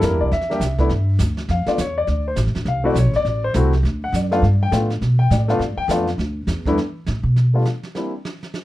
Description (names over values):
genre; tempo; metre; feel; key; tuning
jazz piano trio; 204 BPM; 4/4; swing 61% on 8ths; G mixolydian; A4 = 441 Hz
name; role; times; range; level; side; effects
warm grand piano; melody; 0.0-8.1 s; G2 to G5; -21 LUFS; left 2 dB; none
upright bass; bass; 0.0-7.6 s; D1 to B2; -19 LUFS; equal; none
jazz brush drum kit; drums; 0.0-8.6 s; brushed snare drum, hi-hat, kick drum, snare drum; -28 LUFS; right 2 dB; none
room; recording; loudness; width
light reverb; dark, warm production; -17 LUFS; side -16 dB against mid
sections
0.0-6.8 A section; 6.8-8.6 A section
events
grand piano solo 0.0-6.8; upright bass solo 6.8-8.6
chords
0.0 C9; 0.9 G7(no3); 2.1 D7; 4.4 G9; 6.2 Dsus2; 6.8 Gadd9 (rootless); 7.9 C9